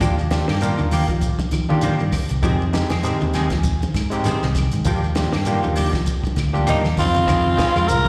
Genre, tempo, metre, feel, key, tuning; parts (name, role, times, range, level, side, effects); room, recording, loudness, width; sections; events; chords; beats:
afrobeat; 99 BPM; 4/4; swing 56% on 16ths; A4 = 440 Hz
overdriven tine electric piano; accompaniment; 0.0-6.8 s; Ab3 to Bb4; -28 LUFS; equal; slapback echo
semi-hollow electric guitar; arpeggios; 0.0-8.1 s; Eb3 to Ab3; -30 LUFS; equal; tremolo, slapback echo
semi-hollow electric guitar; stabs; 0.0-8.1 s; Eb3 to Ab4; -30 LUFS; equal; ensemble chorus, slapback echo
fingered electric bass; bass; 0.0-8.1 s; C2 to Eb3; -24 LUFS; equal
compact cocktail drum kit; drums; 0.0-8.1 s; hi-hat, kick drum, snare drum; -28 LUFS; equal
claves; percussion; 0.0-7.9 s; -41 LUFS; equal
shekere; percussion; 0.0-8.1 s; -33 LUFS; equal; slapback echo
congas; percussion; 0.3-7.9 s; -32 LUFS; equal
growling tenor saxophone; melody; 6.7-8.1 s; Eb4 to Bb4; -21 LUFS; equal; slapback echo
clear alto saxophone; second line; 6.7-8.1 s; Bb3 to F4; -30 LUFS; equal; slapback echo
light reverb, small room ambience; live gig heard through the venue's PA, recital hall reverb; -20 LUFS; mono
0.0-7.3 A section
drum fill 6.5-7.3
0.0 Ebmaj7; 2.4 Fm7; 4.9 Ebmaj7; 7.3 Fm7
| 0.02 0.62 1.23 1.83 | 2.44 3.05 3.65 4.26 | 4.87 5.47 6.08 6.68 | 7.29 7.89